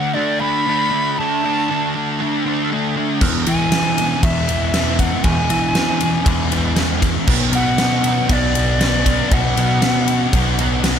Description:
rock, shoegaze and dream pop; 118 BPM; 4/4; straight; A4 = 440 Hz
silver concert flute; melody; 0.0-10.9 s; D5 to B5; -22 LUFS; equal; tape echo
thick fuzz guitar; riff; 0.0-11.0 s; E2 to D4; -19 LUFS; equal; distortion, analog chorus
growling picked electric bass; bass; 3.2-11.0 s; B1 to E3; -21 LUFS; equal; overdrive
huge arena drum kit; drums; 3.2-11.0 s; crash cymbal, kick drum, ride cymbal, snare drum; -19 LUFS; equal
light reverb, studio ambience; -15 LUFS; side -8 dB against mid
0.0-11.0 A section
0.0 D5; 3.2 E; 7.3 Bm
0.15 0.66 | 1.17 1.68 2.19 2.70 | 3.21 3.71 4.22 4.73 | 5.24 5.75 6.26 6.77 | 7.28 7.79 8.29 8.80 | 9.31 9.82 10.33 10.84

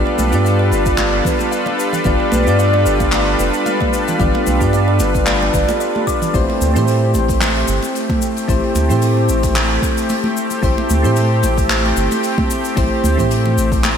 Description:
sunset chillout; 112 BPM; 4/4; swing 55% on 16ths; A minor; A4 = 444 Hz
soft electric-piano-like synth keys; accompaniment; 0.0-14.0 s; A3 to D5; -19 LUFS; moving between left 4 dB and right 3 dB; chorus, auto-pan, low-pass filter, digital delay
lush unison pad; sustained chords; 0.0-14.0 s; G3 to B4; -20 LUFS; equal; chorus
round analog bass; bass; 0.0-14.0 s; F1 to A2; -17 LUFS; equal
kalimba; arpeggios; 0.1-6.3 s; G4 to D6; -24 LUFS; left 1 dB; digital delay
congas; percussion; 0.1-14.0 s; -26 LUFS; right 2 dB
jazz brush drum kit; drums; 0.2-14.0 s; cabasa, handclaps, hi-hat; -24 LUFS; left 1 dB; gated reverb
electronic kick drum; drums; 0.9-13.8 s; -21 LUFS; equal; overdrive
moderate lush hall reverb, RT60 2.8 s; bright 1980s-style digital production; -13 LUFS; side -8 dB against mid
0.0-6.3 A section; 6.3-14.0 A section
filter sweep on synth keys 0.0-6.3
0.0 G7; 6.3 Am7
0.45 0.98 1.52 | 2.06 2.59 3.13 3.66 | 4.20 4.73 5.27 5.81 | 6.34 6.88 7.41 7.95 | 8.48 9.02 9.56 10.09 | 10.63 11.16 11.70 12.23 | 12.77 13.31 13.84

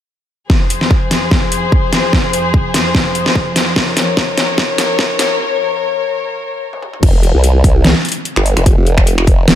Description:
heavy wobble dubstep; 147 BPM; 4/4; swing 54% on 16ths, half-time; F minor; A4 = 436 Hz
warm chamber string section; sustained chords; 0.5-7.0 s; F2 to Db5; -17 LUFS; left 3 dB; sidechain pumping
dubstep drum kit; drums; 0.5-9.6 s; crash cymbal, finger snaps, hi-hat, snare drum, toms; -15 LUFS; equal; overdrive, high-pass filter on snare, high-pass filter on hats, high-pass filter on toms, high-pass filter on cymbals, high-pass filter on room
electronic kick drum; drums; 0.5-9.4 s; -13 LUFS; equal; overdrive
formant-sweep wobble bass; bass; 7.0-9.6 s; F1 to C2; -12 LUFS; equal; chorus, overdrive
light reverb; dark, warm production, high-pass filter; -11 LUFS; side -11 dB against mid
0.5-7.0 A section; 7.0-9.6 B section
build-up 0.5-7.0; drum fill 0.5-5.4, 6.7-7.0; break 5.4-7.0; drop 7.0-9.6
0.5 Fm; 3.8 Bbm/F; 7.0 F5
| 0.50 0.91 1.31 1.72 | 2.13 2.54 2.95 3.35 | 3.76 4.17 4.58 4.99 | 5.40 5.80 6.21 6.62 | 7.03 7.44 7.84 8.25 | 8.66 9.07 9.48

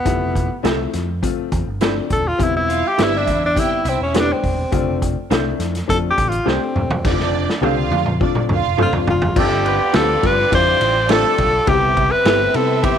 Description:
uptempo 1960s-style soul; 103 BPM; 4/4; straight; A4 = 440 Hz
breathy tenor saxophone; melody; 0.0-13.0 s; B3 to C5; -18 LUFS; left 1 dB
warm upright piano; accompaniment; 0.0-13.0 s; C3 to A4; -23 LUFS; left 12 dB
picked electric bass; bass; 0.1-12.9 s; Eb1 to C3; -23 LUFS; right 1 dB
vintage drum kit; drums; 0.1-13.0 s; crash cymbal, hi-hat, kick drum, ride cymbal, snare drum, toms; -21 LUFS; right 1 dB
electric guitar through a small old amp; stabs; 0.6-12.4 s; D4 to C5; -25 LUFS; right 13 dB; slapback echo
warm studio violin section; second line; 2.7-13.0 s; G3 to G5; -24 LUFS; right 12 dB
warm horn section; second line; 9.4-11.5 s; A3 to C5; -24 LUFS; right 14 dB
light reverb, small room ambience; 1960s-style stereo with parts hard left and right; -15 LUFS; side -8 dB against mid
0.0-7.0 A section; 7.0-9.4 B section; 9.4-13.0 C section
tenor saxophone solo 0.0-7.0; drum fill 6.5-7.0, 7.0-9.4
0.1 Fmaj7; 2.4 Cmaj7/E; 4.7 F6; 9.4 G7sus4; 11.7 Cmaj7
| 0.06 0.64 1.23 1.81 | 2.40 2.98 3.56 4.14 | 4.72 5.31 5.89 6.47 | 7.05 7.63 8.21 8.79 | 9.37 9.95 10.53 11.10 | 11.68 12.26 12.84

